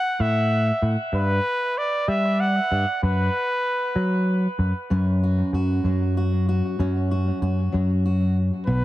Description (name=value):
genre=indie folk with a building arrangement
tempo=64 BPM (dotted quarters)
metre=6/8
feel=straight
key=unclear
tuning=A4 = 441 Hz
part: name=clear trumpet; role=melody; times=0.0-4.6, 8.7-8.8 s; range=B4 to F#5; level=-24 LUFS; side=equal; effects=dub echo
part: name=picked electric bass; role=bass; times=0.2-8.8 s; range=B1 to G3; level=-21 LUFS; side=equal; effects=none
part: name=fingerpicked steel-string acoustic guitar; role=accompaniment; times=4.9-8.8 s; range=F#2 to F#4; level=-25 LUFS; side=left 1 dB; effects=dub echo
room=light reverb, small room ambience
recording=echo-heavy mix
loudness=-20 LUFS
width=side -15 dB against mid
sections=0.0-4.9 A section; 4.9-8.7 B section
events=none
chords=0.0 A5; 1.1 G; 3.0 B5/F#; 4.9 F#5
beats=0.20 | 1.14 2.08 | 3.02 3.96 | 4.90 5.85 | 6.79 7.73 | 8.68